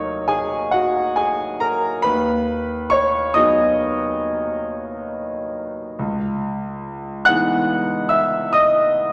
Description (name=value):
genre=classical, impressionist solo piano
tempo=46 BPM (dotted quarters)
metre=9/8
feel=rubato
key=unclear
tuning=A4 = 438 Hz
part: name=clear concert grand piano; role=solo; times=0.0-9.1 s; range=C#2 to F#6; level=-20 LUFS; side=equal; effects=none
room=wet scoring stage reverb, RT60 1.6 s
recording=none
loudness=-20 LUFS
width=mono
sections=0.0-9.1 A section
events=none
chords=0.0 D#m7; 2.1 G#m7/D#; 6.0 C#m9